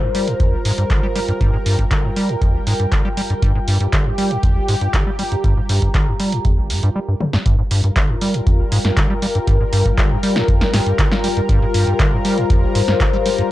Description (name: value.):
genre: acid house.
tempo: 119 BPM.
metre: 4/4.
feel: straight.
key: G minor.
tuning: A4 = 440 Hz.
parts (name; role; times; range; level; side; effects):
lush unison pad; sustained chords; 0.0-13.5 s; G3 to Bb4; -25 LUFS; equal; chorus, sidechain pumping.
deep acid bass; riff; 0.0-13.4 s; G1 to G3; -19 LUFS; equal; wide subtle chorus, vintage 12-bit sampler grit, tape echo.
warbly tape-like pad; texture; 0.0-13.5 s; F4 to Bb5; -25 LUFS; left 4 dB; chorus, built-in reverb, phaser, sidechain pumping.
punchy analog drum machine; drums; 0.1-13.5 s; handclaps, hi-hat, snare drum, toms; -24 LUFS; equal; none.
electronic kick drum; drums; 0.4-13.1 s; none; -18 LUFS; equal; none.
room: little or no reverb.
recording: dry, gritty hardware recording, cassette tape.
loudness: -15 LUFS.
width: side -15 dB against mid.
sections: 0.0-7.5 A section; 7.5-13.5 B section.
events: break 7.0-7.5; drum fill 7.2; drop 7.5-13.5.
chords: 0.0 Gm7.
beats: 0.40 0.90 | 1.41 1.91 2.42 2.92 | 3.42 3.93 4.43 4.94 | 5.44 5.95 6.45 6.95 | 7.46 7.96 8.47 8.97 | 9.47 9.98 10.48 10.99 | 11.49 12.00 12.50 13.00 | 13.51.